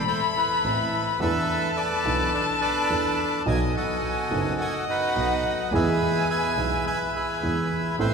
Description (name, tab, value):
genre	tango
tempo	106 BPM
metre	4/4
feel	rubato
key	unclear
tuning	A4 = 440 Hz
part	bandoneon	melody	0.0-8.1 s	D4 to G#5	-26 LUFS	right 2 dB	none
part	warm violin	second line	0.0-8.1 s	F#5 to C6	-28 LUFS	left 4 dB	none
part	warm upright piano	accompaniment	0.0-8.1 s	F#1 to A4	-29 LUFS	right 2 dB	none
part	rich double bass	bass	0.0-8.1 s	F#1 to E2	-30 LUFS	right 1 dB	none
room	wet church reverb, RT60 3.5 s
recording	recorded in a church or concert hall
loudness	-22 LUFS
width	side -5 dB against mid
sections	0.0-8.1 A section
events	none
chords	0.0 Am; 1.2 E7sus4; 3.5 B7; 5.7 E